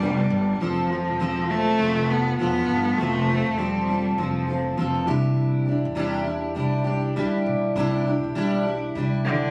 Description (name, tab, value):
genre	acoustic pop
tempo	100 BPM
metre	4/4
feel	swing 60% on 16ths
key	unclear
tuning	A4 = 441 Hz
part	rich cello	melody	0.0-4.8, 9.2-9.5 s	D3 to B3	-26 LUFS	equal	delay
part	fingerpicked steel-string acoustic guitar	accompaniment	0.0-9.5 s	C3 to A4	-27 LUFS	equal	double-tracked
part	upright bass	bass	0.0-9.5 s	E1 to E2	-29 LUFS	equal	none
room	moderate studio reverb, RT60 0.8 s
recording	recorded on a phone in the room, studio reverb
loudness	-23 LUFS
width	mono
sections	0.6-9.5 A section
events	none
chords	0.0 G; 0.6 F; 5.1 Cadd9